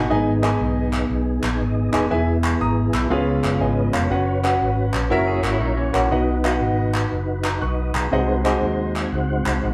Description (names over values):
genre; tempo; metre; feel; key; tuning
uptempo gospel; 120 BPM; 4/4; swing 65% on 8ths; unclear; A4 = 441 Hz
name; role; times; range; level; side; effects
clean electric guitar; second line; 0.0-0.1, 5.1-6.1 s; E3 to A#4; -34 LUFS; equal; none
clear grand piano; accompaniment; 0.0-9.0 s; G#2 to F#6; -25 LUFS; equal; none
tonewheel organ; sustained chords; 0.0-9.7 s; G#3 to G#5; -26 LUFS; equal; slow rotary speaker, chorus vibrato
fingered electric bass; bass; 0.0-9.7 s; D#1 to D#2; -26 LUFS; equal; none
group handclap; percussion; 0.4-9.5 s; none; -31 LUFS; equal; none
room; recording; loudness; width
wet large studio reverb, RT60 0.9 s; band playing live in one room; -21 LUFS; mono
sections
0.0-9.7 A section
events
tonewheel organ fill 1.1-2.1, 8.6-9.7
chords
0.1 G#m; 2.1 E; 3.1 C#7; 4.1 F#sus4; 5.1 F#7; 6.1 B; 8.1 G#7/B#